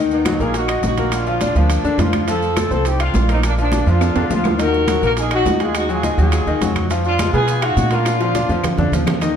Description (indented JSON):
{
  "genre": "latin, salsa",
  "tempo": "208 BPM",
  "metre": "4/4",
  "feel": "straight",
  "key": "unclear",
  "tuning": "A4 = 438 Hz",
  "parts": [
    { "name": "bright grand piano", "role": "accompaniment", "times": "0.0-9.4 s", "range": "D3 to F5", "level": "-22 LUFS", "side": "left 4 dB", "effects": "none" },
    { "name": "upright bass", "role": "bass", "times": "0.0-9.4 s", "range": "Bb1 to Cb3", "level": "-20 LUFS", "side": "right 1 dB", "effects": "none" },
    { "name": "mellow horn section", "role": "melody", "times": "0.1-8.9 s", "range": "Bb3 to Bb4", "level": "-20 LUFS", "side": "equal", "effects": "none" },
    { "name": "congas", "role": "percussion", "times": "0.1-9.4 s", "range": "none", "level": "-24 LUFS", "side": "equal", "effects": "none" },
    { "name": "maracas", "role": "percussion", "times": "0.1-9.4 s", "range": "none", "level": "-36 LUFS", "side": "right 6 dB", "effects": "none" },
    { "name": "bongos", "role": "percussion", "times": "0.3-9.4 s", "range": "none", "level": "-29 LUFS", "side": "left 4 dB", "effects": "none" },
    { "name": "claves", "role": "percussion", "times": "0.3-9.2 s", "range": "none", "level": "-35 LUFS", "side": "left 8 dB", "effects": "none" },
    { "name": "timbales", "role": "percussion", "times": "0.3-9.4 s", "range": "none", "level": "-27 LUFS", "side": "right 6 dB", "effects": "none" }
  ],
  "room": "moderate recital hall reverb, RT60 1.7 s",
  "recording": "dark, warm production",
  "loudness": "-15 LUFS",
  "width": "side -8 dB against mid",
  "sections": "0.0-9.2 A section",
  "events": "drum fill 4.0-4.6, 8.1-9.2",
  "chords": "0.0 Ebm; 1.1 Bb; 2.3 F; 3.4 Bb; 4.6 Ebm; 5.7 Ab5/Eb; 6.9 Fdim; 8.1 Bb"
}